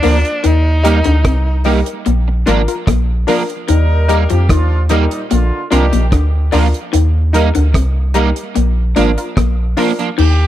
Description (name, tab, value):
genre	roots reggae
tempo	74 BPM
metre	4/4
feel	straight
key	Eb major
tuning	A4 = 443 Hz
part	bright tenor saxophone	melody	0.0-2.1, 10.2-10.5 s	D4 to G4	-20 LUFS	equal	tape echo
part	electric guitar at the edge of break-up	accompaniment	0.0-10.1 s	F3 to Eb4	-20 LUFS	right 7 dB	analog chorus, tape echo
part	electric guitar through a small old amp	riff	0.0-10.4 s	Ab2 to F3	-20 LUFS	left 8 dB	none
part	filtered dub chord stab	stabs	0.0-10.0 s	D4 to Bb4	-19 LUFS	left 4 dB	chorus
part	soft dub sub bass	bass	0.0-10.5 s	Ab1 to F2	-13 LUFS	equal	none
part	damped 70s drum kit	drums	0.0-10.4 s	crash cymbal, hi-hat, kick drum, rim click	-19 LUFS	right 1 dB	none
part	clear horn section	second line	3.7-6.0 s	Bb2 to Bb4	-23 LUFS	right 1 dB	tape echo
room	light reverb, small room ambience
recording	none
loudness	-11 LUFS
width	side -12 dB against mid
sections	0.0-10.2 A section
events	none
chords	0.4 Eb; 2.1 Bb; 3.7 Eb; 5.3 Bb; 6.9 Eb; 8.6 Bb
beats	| 0.44 1.25 2.06 2.87 | 3.68 4.50 5.31 6.12 | 6.93 7.75 8.56 9.37 | 10.18